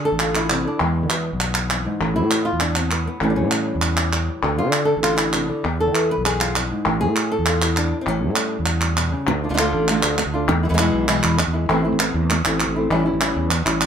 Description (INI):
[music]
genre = flamenco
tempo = 198 BPM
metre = 4/4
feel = straight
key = unclear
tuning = A4 = 438 Hz
[part]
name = flamenco guitar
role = melody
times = 0.0-13.9 s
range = E2 to B4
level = -22 LUFS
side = left 1 dB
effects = none
[part]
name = sustaining fretless electric bass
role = bass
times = 0.0-13.9 s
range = A1 to E3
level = -23 LUFS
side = equal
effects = none
[part]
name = palmas hand claps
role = percussion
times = 0.2-13.9 s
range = none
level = -22 LUFS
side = right 1 dB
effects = none
[sound]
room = moderate studio reverb, RT60 0.6 s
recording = band playing live in one room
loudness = -18 LUFS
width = side -8 dB against mid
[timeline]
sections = 0.0-9.3 A section; 9.3-13.9 B section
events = none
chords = 0.0 Dm; 0.8 E; 2.0 A5; 4.4 Dm; 5.6 E; 6.9 A5; 9.3 Dm; 10.5 E; 11.7 Am